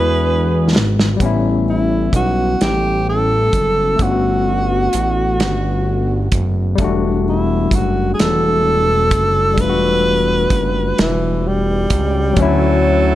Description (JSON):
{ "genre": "slow six-eight R&B", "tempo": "43 BPM (dotted quarters)", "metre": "6/8", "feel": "straight", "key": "unclear", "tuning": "A4 = 439 Hz", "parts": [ { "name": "breathy tenor saxophone", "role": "melody", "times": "0.0-13.2 s", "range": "E3 to B4", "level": "-18 LUFS", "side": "right 1 dB", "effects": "none" }, { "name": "barky tine electric piano", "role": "accompaniment", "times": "0.0-13.2 s", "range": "F#3 to F#4", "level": "-20 LUFS", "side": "left 6 dB", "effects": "overdrive" }, { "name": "clear horn section", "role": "stabs", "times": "0.0-0.7, 12.4-13.2 s", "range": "D3 to A4", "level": "-25 LUFS", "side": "right 6 dB", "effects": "none" }, { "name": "fat analog bass", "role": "bass", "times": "0.0-13.2 s", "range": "E1 to E2", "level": "-18 LUFS", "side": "right 1 dB", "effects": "none" }, { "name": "warm soul drum kit", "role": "drums", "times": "0.8-12.6 s", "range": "hi-hat, kick drum, snare drum", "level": "-19 LUFS", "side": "right 1 dB", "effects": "none" } ], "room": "small room reverb", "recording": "none", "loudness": "-13 LUFS", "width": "side -14 dB against mid", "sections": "0.0-1.2 A section; 1.2-12.4 B section", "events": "drum fill 0.0-1.2", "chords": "0.0 E9; 1.2 A9; 4.0 Gmaj9#11; 6.8 Em11; 12.4 Dmaj9" }